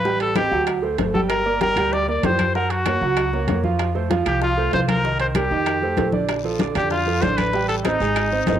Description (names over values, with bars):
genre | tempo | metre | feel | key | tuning
latin, salsa | 192 BPM | 4/4 | straight | unclear | A4 = 439 Hz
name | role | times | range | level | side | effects
clear trumpet | melody | 0.0-8.6 s | Eb4 to D5 | -22 LUFS | left 1 dB | cassette tape
upright bass | bass | 0.0-8.6 s | G1 to F#2 | -26 LUFS | left 1 dB | none
congas | percussion | 0.0-8.6 s | none | -26 LUFS | left 3 dB | none
warm concert grand piano | accompaniment | 0.1-8.6 s | D3 to G#5 | -23 LUFS | right 6 dB | cassette tape
bongos | percussion | 0.1-8.6 s | none | -31 LUFS | left 12 dB | none
timbales | percussion | 0.2-8.6 s | none | -31 LUFS | right 10 dB | none
claves | percussion | 0.4-8.3 s | none | -34 LUFS | left 15 dB | none
guiro | percussion | 6.3-8.6 s | none | -38 LUFS | left 14 dB | none
room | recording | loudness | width
wet spring reverb, RT60 1.2 s, small room ambience | home recording on cassette | -18 LUFS | side -10 dB against mid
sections
0.0-8.6 A section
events
none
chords
0.0 Am7b5; 0.7 D7; 1.3 Gm7; 2.5 F#; 3.8 F; 5.0 Cm7; 5.7 F7; 6.3 Bbmaj7; 7.5 Am7b5